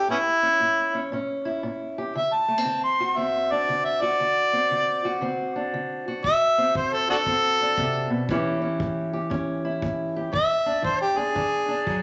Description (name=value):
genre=acoustic country blues, solo or duo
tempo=117 BPM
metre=4/4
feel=swing 65% on 8ths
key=unclear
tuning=A4 = 440 Hz
part: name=mellow harmonica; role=melody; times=0.0-12.0 s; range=B3 to C6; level=-24 LUFS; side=equal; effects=none
part: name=fingerpicked steel-string acoustic guitar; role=accompaniment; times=0.0-12.0 s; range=A2 to G4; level=-30 LUFS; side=equal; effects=none
part: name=kick drum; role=drums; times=6.2-12.0 s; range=none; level=-37 LUFS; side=equal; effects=none
room=moderate large studio reverb, RT60 1.2 s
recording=nothing above 7.8 kHz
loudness=-24 LUFS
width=mono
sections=0.0-12.0 A section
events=harmonica solo 0.0-12.0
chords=0.0 A; 2.1 D7; 8.3 A7; 10.3 E7